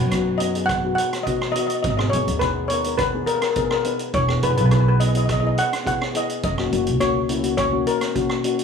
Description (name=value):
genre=calypso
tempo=104 BPM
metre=4/4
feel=straight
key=B major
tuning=A4 = 440 Hz
part: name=steel pan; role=melody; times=0.0-8.4 s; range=A#4 to F#5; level=-23 LUFS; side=left 1 dB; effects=none
part: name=upright bass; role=bass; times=0.0-7.8 s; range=E1 to F#2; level=-22 LUFS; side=right 1 dB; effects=none
part: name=steel pan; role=accompaniment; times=0.1-8.6 s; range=A#3 to B4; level=-24 LUFS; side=left 4 dB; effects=none
part: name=street-band drum kit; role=drums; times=0.1-8.6 s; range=hi-hat, kick drum, rim click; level=-27 LUFS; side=right 3 dB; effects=none
room=light reverb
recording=studio ambience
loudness=-18 LUFS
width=side -6 dB against mid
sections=0.0-8.6 A section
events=none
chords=0.0 B; 1.8 G#m; 4.1 E; 6.4 F#